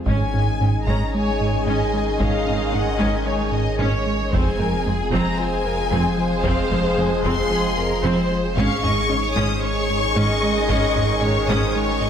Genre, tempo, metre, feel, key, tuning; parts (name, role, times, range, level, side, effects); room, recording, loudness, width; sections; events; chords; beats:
cinematic, hybrid orchestral and electronic film score; 113 BPM; 4/4; straight; A4 = 440 Hz
sweeping resonant pad; sustained chords; 0.0-12.1 s; Ab3 to Ab4; -29 LUFS; right 1 dB; chorus
warm symphonic violin section; melody; 0.1-12.1 s; Eb5 to Eb6; -26 LUFS; left 5 dB
rich symphonic viola section; accompaniment; 0.1-12.1 s; C4 to Ab4; -29 LUFS; right 2 dB
bright trombone section; sustained chords; 0.1-12.1 s; Eb3 to Ab3; -30 LUFS; right 4 dB
mellow French horn section; sustained chords; 0.1-12.1 s; C4 to Ab4; -30 LUFS; left 5 dB
woody wave-folded pluck; arpeggios; 0.1-11.6 s; F3 to Db4; -32 LUFS; left 4 dB
smooth synth bass; riff; 0.1-12.1 s; F2 to Ab3; -26 LUFS; right 1 dB
pure sine sub bass; bass; 0.1-12.1 s; F1 to Ab1; -29 LUFS; equal
warm symphonic cello section; bass; 0.1-11.6 s; F2 to Ab2; -29 LUFS; right 2 dB
warm symphonic double bass section; bass; 0.1-11.6 s; F1 to Ab1; -28 LUFS; right 2 dB
taiko ensemble; drums; 0.1-12.0 s; -29 LUFS; equal
warm symphonic violin section; second line; 1.1-12.1 s; Ab4 to F5; -27 LUFS; left 1 dB
moderate scoring stage reverb, RT60 2.1 s; -18 LUFS; side -8 dB against mid
0.1-12.1 A section
0.1 Absus4; 4.3 Fm; 8.6 Absus4
| 0.08 0.61 1.14 1.67 | 2.20 2.73 3.26 3.79 | 4.32 4.86 5.39 5.92 | 6.45 6.98 7.51 8.04 | 8.57 9.10 9.63 10.16 | 10.70 11.23 11.76